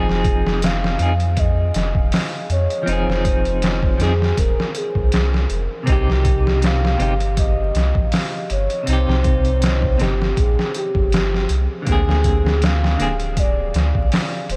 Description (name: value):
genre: trip hop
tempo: 80 BPM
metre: 4/4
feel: swing 54% on 16ths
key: F minor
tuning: A4 = 438 Hz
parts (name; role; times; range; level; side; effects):
- pure breathy sine lead; melody; 0.0-14.6 s; G4 to F5; -27 LUFS; equal; chorus, tape echo
- clean electric guitar; accompaniment; 0.0-13.1 s; C3 to Ab4; -28 LUFS; equal; tremolo, tape echo
- soft dub sub bass; bass; 0.0-14.6 s; D1 to F2; -22 LUFS; equal; none
- trip hop sampler-style drum kit; drums; 0.1-14.6 s; hi-hat, kick drum, snare drum; -23 LUFS; equal; none
room: moderate huge ambient reverb, RT60 8.4 s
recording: dreamy mix soaked in reverb, vinyl crackle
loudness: -19 LUFS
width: mono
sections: 0.0-14.6 A section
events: none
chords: 0.0 Fm7; 5.9 Cm; 11.9 Bb7/D